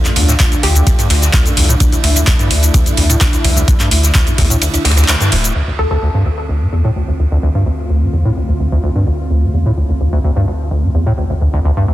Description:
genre	acid house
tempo	128 BPM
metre	4/4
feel	straight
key	D minor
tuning	A4 = 441 Hz
part	warm analog pad	sustained chords	0.0-11.9 s	D3 to F4	-23 LUFS	equal	chorus, sidechain pumping
part	deep acid bass	riff	0.0-11.9 s	D2 to A2	-15 LUFS	equal	analog chorus
part	booming analog drum machine	drums	0.0-5.5 s	cabasa, handclaps, hi-hat	-17 LUFS	left 1 dB	low-pass filter on hats, low-pass filter on perc, low-pass filter on snare
part	round analog bass	bass	0.2-11.9 s	D1 to D2	-16 LUFS	equal	sidechain pumping
part	warm soul drum kit	drums	0.2-5.4 s	ride cymbal, snare drum	-24 LUFS	right 4 dB	high-pass filter on cymbals, high-pass filter on snare, high-pass filter on room
part	electronic kick drum	drums	0.4-4.5 s	none	-14 LUFS	equal	none
part	hollow square pluck	melody	0.6-1.0, 5.8-6.0 s	G4 to A4	-24 LUFS	left 1 dB	lush chorus, digital delay
room	light reverb, digital ambience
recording	dense, heavily limited modern master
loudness	-11 LUFS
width	side -15 dB against mid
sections	0.0-5.6 A section; 5.6-11.9 B section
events	filter sweep on acid bass 0.0-5.6; kick drops out 4.6-5.6; band accent 5.1; filter sweep on analog synth pad 5.6-11.9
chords	0.0 Dm; 5.6 Dm7

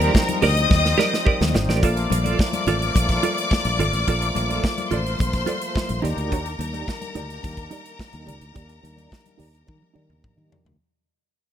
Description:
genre	disco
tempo	107 BPM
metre	4/4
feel	straight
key	unclear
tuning	A4 = 439 Hz
part	clear studio string section	second line	0.0-10.5 s	Bb4 to Eb6	-26 LUFS	left 4 dB	none
part	clean electric guitar	accompaniment	0.0-10.7 s	Eb4 to Eb5	-25 LUFS	right 6 dB	tremolo, low-pass filter
part	overdriven tonewheel organ	sustained chords	0.0-10.8 s	Eb3 to G4	-30 LUFS	equal	chorus vibrato, slow rotary speaker, low-pass filter
part	fingered electric bass	bass	0.0-10.8 s	Ab1 to Eb3	-24 LUFS	equal	none
part	modern studio drum kit	drums	0.0-10.8 s	hi-hat, kick drum, snare drum, toms	-22 LUFS	equal	none
part	congas	percussion	0.0-10.7 s	none	-32 LUFS	left 6 dB	none
room	light reverb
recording	none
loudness	-19 LUFS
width	side -10 dB against mid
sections	0.0-10.8 A section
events	fade-out 0.0-10.8; filter sweep 0.0-10.8; drum fill 0.7-1.8, 9.7-10.8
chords	0.0 Ebmaj7; 1.8 Bbmaj7; 6.0 Ebmaj7

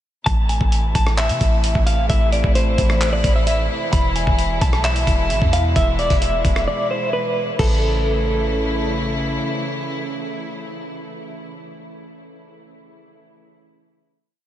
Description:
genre	hip hop, trap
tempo	131 BPM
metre	4/4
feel	half-time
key	A harmonic minor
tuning	A4 = 440 Hz
part	clean electric guitar	melody	0.3-8.9 s	A4 to B5	-23 LUFS	equal	tremolo, low-pass filter, tape echo
part	warm chamber string section	sustained chords	0.3-11.6 s	B2 to E4	-26 LUFS	equal	none
part	warm 808-style bass	bass	0.3-9.4 s	D1 to C3	-21 LUFS	equal	none
part	dusty soul sampler-style drum kit	drums	0.3-7.7 s	crash cymbal, handclaps, hi-hat, kick drum, rim click	-21 LUFS	equal	vintage 12-bit sampler grit
room	moderate huge ambient reverb, RT60 8.3 s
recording	dreamy mix soaked in reverb, nothing above 10.6 kHz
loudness	-16 LUFS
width	side -12 dB against mid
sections	0.3-7.6 hook; 7.6-11.3 final chord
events	break 6.7-7.6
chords	0.3 Am; 3.9 E; 7.6 A

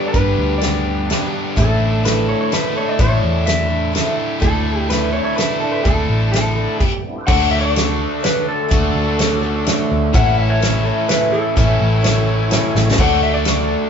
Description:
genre	folk rock and heartland rock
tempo	126 BPM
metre	3/4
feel	straight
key	A mixolydian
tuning	A4 = 440 Hz
part	electric guitar through a small old amp	melody	0.0-13.9 s	A4 to F#5	-22 LUFS	left 2 dB	none
part	picked acoustic archtop guitar	accompaniment	0.0-13.9 s	A2 to B4	-24 LUFS	equal	none
part	tonewheel organ	sustained chords	0.0-13.9 s	G3 to C#5	-32 LUFS	equal	overdrive, fast rotary speaker
part	crunchy overdriven guitar	riff	0.0-13.9 s	G2 to G4	-21 LUFS	equal	none
part	hollow-body short-scale picked electric bass	bass	0.1-13.7 s	G1 to E2	-19 LUFS	equal	none
part	natural country drum kit	drums	0.1-13.6 s	crash cymbal, hi-hat, kick drum, snare drum	-19 LUFS	equal	none
part	warm upright piano	accompaniment	7.3-13.8 s	D4 to C#6	-29 LUFS	right 2 dB	none
room	moderate studio reverb, RT60 0.9 s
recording	band playing live in one room, nothing above 7.7 kHz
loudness	-14 LUFS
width	side -7 dB against mid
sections	0.0-7.3 A section; 7.3-13.9 B section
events	stop 6.8-7.3; drum fill 12.8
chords	0.0 G; 1.6 Asus4; 7.3 Dmaj7; 10.1 A; 13.0 Dmaj7

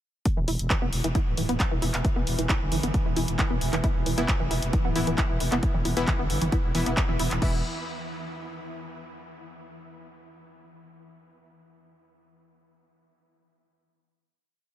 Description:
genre	driving peak-time techno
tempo	134 BPM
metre	4/4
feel	straight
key	E minor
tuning	A4 = 439 Hz
part	deep dark ambient pad	drone	0.5-7.5 s	E3	-36 LUFS	right 1 dB	chorus, built-in reverb, sidechain pumping
part	electronic kick drum	drums	0.3-7.5 s	none	-26 LUFS	equal	overdrive
part	punchy analog drum machine	drums	0.3-7.5 s	crash cymbal, handclaps, hi-hat	-32 LUFS	equal	sidechain pumping on hats, sidechain pumping on cymbals
part	tight sequenced synth	riff	0.4-7.6 s	E3 to E4	-32 LUFS	equal	chorus, phaser, overdrive, sidechain pumping, analog delay
part	growling FM bass	bass	0.4-7.6 s	D1 to G1	-29 LUFS	equal	sidechain pumping
part	supersaw stab	stabs	4.2-7.6 s	E3 to E4	-33 LUFS	left 2 dB	vintage 12-bit sampler grit, sidechain pumping, analog delay
room	light reverb, digital ambience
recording	none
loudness	-23 LUFS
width	side -12 dB against mid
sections	0.3-7.4 groove; 7.4-9.2 final chord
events	filter sweep on synth arpeggio sound 0.3-7.4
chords	0.3 E5

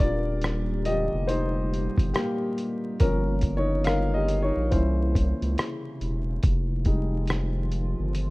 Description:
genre	lo-fi hip hop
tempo	70 BPM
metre	4/4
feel	swing 61% on 16ths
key	Eb major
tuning	A4 = 440 Hz
part	dark upright piano	accompaniment	0.0-8.3 s	D3 to F5	-28 LUFS	left 1 dB	none
part	dark analog pad	sustained chords	0.4-8.3 s	Bb2 to G4	-36 LUFS	equal	chorus, phaser
part	saturated sub bass	bass	0.0-8.3 s	Eb1 to Db2	-26 LUFS	equal	none
part	lo-fi sampler-style drum kit	drums	0.0-8.3 s	hi-hat, kick drum, rim click	-25 LUFS	equal	vintage 12-bit sampler grit
room	little or no reverb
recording	rough home demo mix, vinyl crackle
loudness	-23 LUFS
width	side -22 dB against mid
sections	0.0-8.3 A section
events	upright piano solo 0.0-8.3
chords	0.0 Ebmaj7; 3.0 Gm7b5; 4.7 C7b9; 6.4 Fm7

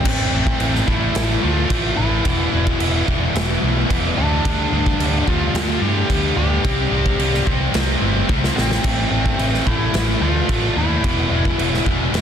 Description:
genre	hard rock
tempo	109 BPM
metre	4/4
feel	straight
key	A minor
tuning	A4 = 443 Hz
part	biting lead guitar	melody	0.0-11.8 s	C4 to G4	-24 LUFS	left 1 dB	overdrive, slapback echo
part	heavy high-gain guitar	riff	0.0-12.2 s	E2 to C4	-25 LUFS	left 15 dB	distortion
part	tight distorted guitar	riff	0.0-12.2 s	E2 to C4	-26 LUFS	right 14 dB	distortion
part	picked electric bass	bass	0.0-12.2 s	E1 to G2	-22 LUFS	equal	none
part	scooped high-gain guitar	riff	0.1-12.2 s	A2 to E4	-27 LUFS	left 1 dB	distortion
part	raw garage drum kit	drums	0.1-12.2 s	crash cymbal, kick drum, snare drum, toms	-21 LUFS	equal	soft clipping on snare
room	little or no reverb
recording	dense, heavily limited modern master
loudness	-16 LUFS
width	side -8 dB against mid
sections	0.1-12.2 A section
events	drum fill 8.3-8.8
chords	0.1 Am; 2.3 E; 4.5 G/D; 6.6 C; 8.8 Am; 11.0 E

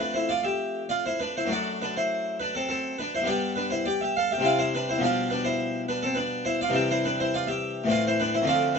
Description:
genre	classical, baroque-style suite movement for harpsichord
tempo	103 BPM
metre	3/4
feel	rubato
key	unclear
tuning	A4 = 441 Hz
part	harpsichord	solo	0.0-8.8 s	F2 to F5	-24 LUFS	equal	none
room	light reverb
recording	nothing above 7.8 kHz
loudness	-24 LUFS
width	side -5 dB against mid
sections	0.0-8.8 A section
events	none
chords	0.0 Dm/F; 1.5 D7/F#; 3.2 G; 4.4 C; 5.0 G7/B; 6.7 C; 7.9 Am

